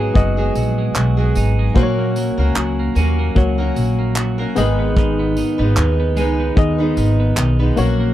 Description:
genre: acoustic pop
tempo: 75 BPM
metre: 4/4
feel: swing 55% on 16ths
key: unclear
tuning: A4 = 439 Hz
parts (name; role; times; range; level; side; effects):
- barky reed electric piano; accompaniment; 0.0-8.1 s; A#3 to D#5; -23 LUFS; left 7 dB; none
- picked steel-string acoustic guitar; accompaniment; 0.0-8.1 s; G#2 to B4; -22 LUFS; right 2 dB; none
- twelve-string electric guitar; arpeggios; 0.0-8.1 s; D#3 to D#4; -24 LUFS; right 7 dB; warbly pitch drift
- upright bass; bass; 0.0-8.1 s; F#1 to D#2; -18 LUFS; equal; none
- soft brush drum kit; drums; 0.2-8.0 s; handclaps, kick drum, tambourine; -18 LUFS; equal; none
room: little or no reverb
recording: dry, close 1970s-style studio recording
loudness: -14 LUFS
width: side -13 dB against mid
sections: 0.0-8.1 A section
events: none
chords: 0.0 B6; 1.8 F#/A#; 4.6 G#m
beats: 0.15 0.95 | 1.76 2.56 3.36 4.17 | 4.97 5.77 6.57 7.37

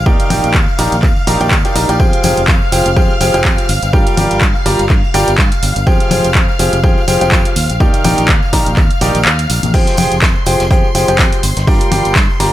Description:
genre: piano house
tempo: 124 BPM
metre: 4/4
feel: swing 56% on 16ths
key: F dorian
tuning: A4 = 440 Hz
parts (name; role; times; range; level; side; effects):
- string machine, violins; sustained chords; 0.0-12.5 s; F5 to C6; -21 LUFS; equal; ensemble chorus, sidechain pumping
- fingered electric bass; bass; 0.0-12.5 s; F1 to G2; -17 LUFS; equal; sidechain pumping
- clear upright piano; riff; 0.1-12.5 s; Eb3 to Bb5; -16 LUFS; equal; sidechain pumping, ping-pong delay
- electronic kick drum; drums; 0.1-12.3 s; none; -13 LUFS; equal; none
- tambourine and congas; percussion; 0.1-12.5 s; none; -24 LUFS; left 3 dB; none
- punchy analog drum machine; drums; 0.2-12.5 s; crash cymbal, handclaps, hi-hat; -17 LUFS; right 1 dB; none
- vintage drum kit; drums; 9.7-12.5 s; hi-hat, snare drum; -28 LUFS; left 2 dB; none
room: studio reverb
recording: none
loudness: -10 LUFS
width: side -13 dB against mid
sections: 0.0-12.5 A section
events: kick drops out 9.3-9.7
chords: 0.0 Ebmaj7; 2.0 Fmadd9; 3.7 Gm7; 5.9 Fmadd9; 7.6 Ebmaj7; 9.7 Fmadd9; 11.4 Gm7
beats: | 0.06 0.55 1.03 1.51 | 2.00 2.48 2.96 3.45 | 3.93 4.42 4.90 5.38 | 5.87 6.35 6.84 7.32 | 7.80 8.29 8.77 9.26 | 9.74 10.22 10.71 11.19 | 11.67 12.16

